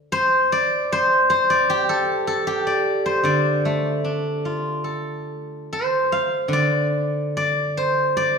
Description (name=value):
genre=chinese traditional, Chinese solo plucked strings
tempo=71-78 BPM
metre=4/4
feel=rubato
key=D yu mode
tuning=A4 = 440 Hz
part: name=steel-string zither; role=solo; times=0.1-8.4 s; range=D3 to F5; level=-18 LUFS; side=equal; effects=none
room=wet recital hall reverb, RT60 1.6 s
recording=recorded in a church or concert hall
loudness=-18 LUFS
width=side -5 dB against mid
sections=0.0-6.5 A section; 6.5-8.4 B section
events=none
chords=none